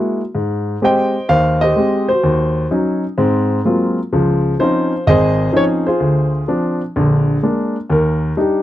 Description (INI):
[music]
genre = solo jazz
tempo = 127 BPM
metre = 4/4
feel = swing 66% on 8ths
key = unclear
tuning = A4 = 439 Hz
[part]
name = warm baby grand piano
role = solo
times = 0.0-8.6 s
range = Ab1 to G5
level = -14 LUFS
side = equal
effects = none
[sound]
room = light reverb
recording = dry, close 1970s-style studio recording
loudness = -14 LUFS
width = side -13 dB against mid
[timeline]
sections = 0.0-7.9 A section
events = none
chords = 0.3 Abmaj7; 2.2 Ebm7; 3.2 Ab13; 4.1 Dbmaj9; 6.0 Dm7b5; 6.9 Bb7; 7.9 Ebmaj7